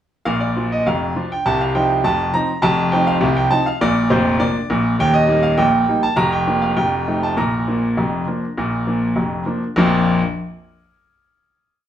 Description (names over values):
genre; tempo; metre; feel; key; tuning
ragtime piano; 101 BPM; 2/4; straight; Bb major; A4 = 440 Hz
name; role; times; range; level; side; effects
bright concert grand piano; solo; 0.3-10.2 s; Eb1 to Bb5; -16 LUFS; equal; none
room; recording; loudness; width
wet studio reverb, RT60 0.8 s; heard from further back in the room; -16 LUFS; side -10 dB against mid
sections
0.3-9.8 A section; 9.8-11.0 final chord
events
none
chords
0.3 Bb; 1.4 F5; 3.8 Bb; 5.0 Eb; 6.2 Bb/F; 6.8 F7; 7.4 Bb